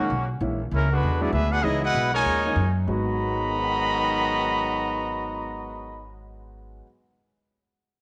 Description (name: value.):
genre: jazz, big band swing.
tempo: 195 BPM.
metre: 4/4.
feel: swing 63% on 8ths.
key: G# minor.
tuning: A4 = 441 Hz.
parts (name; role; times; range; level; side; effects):
warm trumpet section; melody; 0.0-6.1 s; G#3 to B5; -27 LUFS; equal; none.
warm trombone section; second line; 0.0-6.1 s; G#2 to F#4; -34 LUFS; equal; none.
warm grand piano; accompaniment; 0.0-6.8 s; G#2 to F#4; -34 LUFS; equal; none.
upright bass; bass; 0.0-6.8 s; G#1 to F#2; -30 LUFS; equal; none.
room: moderate echo chamber reverb, RT60 2.0 s.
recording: none.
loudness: -24 LUFS.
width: mono.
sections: 0.0-2.9 A section; 2.9-5.3 B section.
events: none.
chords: 0.4 A#m7b5; 1.0 E9; 1.6 C#m9; 2.3 D#7sus4; 2.9 G#m9.